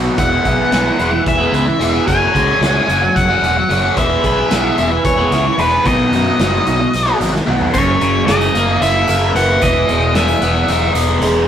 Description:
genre	psychedelic rock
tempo	222 BPM (eighths)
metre	7/8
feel	straight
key	E lydian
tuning	A4 = 440 Hz
part	biting overdriven guitar	riff	0.0-11.5 s	F#2 to F#4	-15 LUFS	equal	phaser
part	fuzz fingered electric bass	bass	0.0-11.5 s	E1 to F#2	-19 LUFS	equal	overdrive
part	octave-fuzz lead guitar	melody	0.2-10.9 s	B4 to G#5	-17 LUFS	left 2 dB	distortion
part	raw garage drum kit	drums	0.2-11.3 s	crash cymbal, hi-hat, kick drum, snare drum, toms	-22 LUFS	equal	none
part	tambourine	percussion	7.7-11.1 s	none	-35 LUFS	right 4 dB	none
room	wet stone room reverb, RT60 1.2 s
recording	rough rehearsal-room recording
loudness	-12 LUFS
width	side -9 dB against mid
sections	0.0-7.7 A section; 7.7-11.5 B section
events	drum fill 7.3-7.7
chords	0.2 E; 2.1 F#sus2; 4.0 E; 5.9 B; 7.7 F#7; 9.6 Emaj7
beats	| 0.18 0.45 0.72 0.99 1.26 1.53 1.80 | 2.07 2.35 2.62 2.89 3.16 3.43 3.70 | 3.97 4.24 4.51 4.78 5.05 5.32 5.59 | 5.86 6.13 6.40 6.67 6.93 7.20 7.47 | 7.74 8.01 8.28 8.55 8.81 9.08 9.35 | 9.62 9.89 10.15 10.42 10.69 10.96 11.22

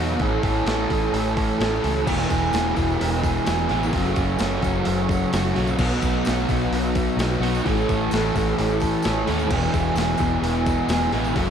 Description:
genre	rock, shoegaze and dream pop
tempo	129 BPM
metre	4/4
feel	straight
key	E major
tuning	A4 = 437 Hz
part	overdriven electric guitar	riff	0.0-11.5 s	E2 to A4	-24 LUFS	right 9 dB	reverse reverb
part	thick fuzz guitar	riff	0.0-11.5 s	E2 to B3	-26 LUFS	left 9 dB	distortion, analog chorus
part	vintage muted fingered electric bass	bass	0.0-11.5 s	E1 to E2	-27 LUFS	equal	none
part	gated 80s digital drum machine	drums	0.2-11.5 s	crash cymbal, hi-hat, kick drum, snare drum	-27 LUFS	equal	gated reverb, gated reverb snare, overdrive
part	overdriven semi-hollow guitar	riff	2.1-11.5 s	E2 to B3	-27 LUFS	left 1 dB	none
part	tambourine	percussion	2.3-11.5 s	none	-44 LUFS	left 8 dB	none
room	light reverb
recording	none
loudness	-19 LUFS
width	side -8 dB against mid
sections	0.0-11.5 A section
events	none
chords	0.2 A; 2.1 E; 3.9 F#m; 5.8 B; 7.7 A; 9.5 E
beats	| 0.21 0.68 1.14 1.61 | 2.08 2.54 3.00 3.47 | 3.94 4.40 4.87 5.33 | 5.80 6.26 6.72 7.19 | 7.65 8.12 8.58 9.04 | 9.51 9.97 10.44 10.90 | 11.36

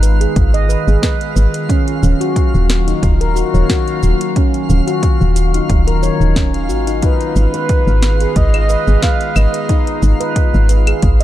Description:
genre	organic downtempo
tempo	90 BPM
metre	4/4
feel	swing 54% on 16ths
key	Eb minor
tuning	A4 = 440 Hz
part	warbly tape-like pad	sustained chords	0.0-11.2 s	Eb3 to Ab4	-23 LUFS	left 1 dB	chorus, built-in reverb, sidechain pumping
part	handpan	arpeggios	0.0-11.2 s	Db4 to Eb5	-19 LUFS	equal	tape echo
part	woody FM bass	bass	0.0-11.2 s	Eb1 to Ab1	-13 LUFS	equal	tube saturation, sidechain pumping
part	afro-pop drum kit	drums	0.0-11.2 s	claves, hi-hat, shaker, snare drum	-23 LUFS	equal	none
part	twinkling granular texture	texture	0.0-11.2 s	F4 to F5	-28 LUFS	right 1 dB	built-in reverb
part	electronic kick drum	drums	0.4-11.2 s	none	-15 LUFS	equal	overdrive
part	breathy flute-like synth lead	melody	7.0-10.0 s	Cb5 to F5	-22 LUFS	right 1 dB	chorus, tape echo
room	little or no reverb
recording	dark, warm production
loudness	-12 LUFS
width	side -13 dB against mid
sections	0.0-11.2 A section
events	none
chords	0.0 Abm; 1.7 Ebm7; 7.0 Abm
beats	0.36 1.03 | 1.69 2.36 3.03 3.69 | 4.36 5.03 5.69 6.36 | 7.03 7.69 8.36 9.03 | 9.69 10.36 11.03

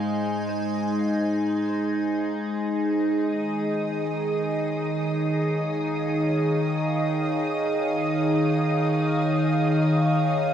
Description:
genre	ambient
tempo	free time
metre	none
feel	none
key	unclear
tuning	A4 = 440 Hz
part	evolving wavetable pad	sustained chords	0.0-10.5 s	Eb3 to Ab5	-22 LUFS	equal	chorus, built-in reverb, phaser, shimmer reverb
part	deep rumbling drone	bass	0.0-3.2 s	Ab2	-45 LUFS	equal	built-in reverb
part	muted studio violin section	texture	3.2-10.5 s	Eb5 to Eb6	-32 LUFS	right 1 dB	shimmer reverb
room	wet cathedral reverb, RT60 6.2 s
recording	dark, warm production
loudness	-22 LUFS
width	side -9 dB against mid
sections	0.0-3.3 A section; 3.3-10.5 B section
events	none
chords	0.0 Ab; 3.3 Eb7sus4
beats	free time

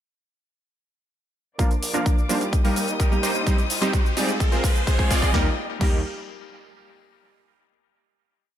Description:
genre	EDM, festival progressive house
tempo	128 BPM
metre	4/4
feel	straight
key	Eb major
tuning	A4 = 441 Hz
part	dark grand piano	accompaniment	1.6-6.0 s	F3 to Bb4	-29 LUFS	right 2 dB	sidechain pumping, ping-pong delay
part	warm studio string section	sustained chords	1.6-5.6 s	Bb3 to Eb6	-33 LUFS	left 3 dB	sidechain pumping, low-pass filter
part	supersaw stab	riff	1.6-6.0 s	F3 to D5	-26 LUFS	equal	sidechain pumping, low-pass filter, ping-pong delay
part	big-room dance drum kit	drums	1.6-5.9 s	crash cymbal, hi-hat, shaker, snare drum	-31 LUFS	equal	none
part	electronic kick drum	drums	1.6-5.9 s	none	-21 LUFS	equal	none
part	riser	sound effects	3.2-5.3 s	none	-32 LUFS	equal	none
part	detuned saw bass	bass	1.8-6.0 s	Bb1 to F2	-32 LUFS	equal	none
room	light reverb, digital ambience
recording	none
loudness	-20 LUFS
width	side -11 dB against mid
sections	1.6-5.3 build; 5.3-7.2 final chord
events	build-up 1.6-5.3; filter sweep on supersaw synth 1.6-5.3; filter sweep on string section 1.6-5.3; riser 3.2-5.3; drum fill 3.5-5.3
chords	1.6 Bb; 2.5 Eb; 3.5 Cm; 4.4 Fm; 5.3 Eb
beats	| 1.59 2.06 2.53 3.00 | 3.47 3.94 4.40 4.87 | 5.34 5.81

